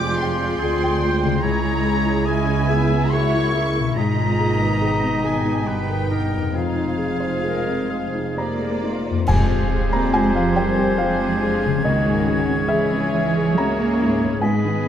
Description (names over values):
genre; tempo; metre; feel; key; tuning
cinematic, emotional film score for orchestra; 64-73 BPM; 3/4; rubato; unclear; A4 = 442 Hz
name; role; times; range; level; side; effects
muted studio violin section; melody; 0.0-14.9 s; Gb4 to D6; -30 LUFS; left 2 dB; none
bright oboe; second line; 0.0-14.9 s; G4 to Fb5; -32 LUFS; right 2 dB; none
clear clarinet; second line; 0.0-14.9 s; Eb4 to Bb4; -30 LUFS; left 1 dB; none
concert flute; second line; 0.0-14.9 s; G6 to Cb7; -31 LUFS; left 2 dB; none
muted studio violin section; second line; 0.0-14.9 s; Fb4 to Fb5; -32 LUFS; equal; none
felt-muted upright piano; accompaniment; 0.0-14.9 s; Db2 to Bb5; -24 LUFS; left 2 dB; none
muted studio viola section; accompaniment; 0.0-14.9 s; F3 to G5; -28 LUFS; right 2 dB; none
warm French horn section; sustained chords; 0.0-14.9 s; Cb3 to F4; -30 LUFS; left 4 dB; none
concert harp; arpeggios; 0.0-14.9 s; F2 to F4; -29 LUFS; left 8 dB; none
muted studio cello section; bass; 0.0-14.9 s; Db2 to Bb3; -25 LUFS; right 3 dB; none
muted studio double bass section; bass; 0.0-14.9 s; F1 to F2; -27 LUFS; right 4 dB; none
cymbal swell, clash cymbals and concert bass drum; percussion; 6.5-10.9 s; none; -27 LUFS; equal; none
timpani; percussion; 9.3-10.5 s; F2; -27 LUFS; equal; none
room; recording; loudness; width
moderate scoring stage reverb, RT60 1.5 s; close, detailed microphones; -18 LUFS; side -9 dB against mid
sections
0.0-9.3 A section; 9.3-14.9 B section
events
band accent 9.3-10.1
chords
0.0 Fmadd9; 1.4 Dbm; 4.0 Abmadd9; 6.5 Fm7; 9.3 Fmadd9; 11.8 Dbm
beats
0.60 | 1.43 2.26 3.13 | 3.98 4.82 5.67 | 6.55 7.45 8.38 | 9.28 10.13 10.98 | 11.84 12.68 13.56 | 14.41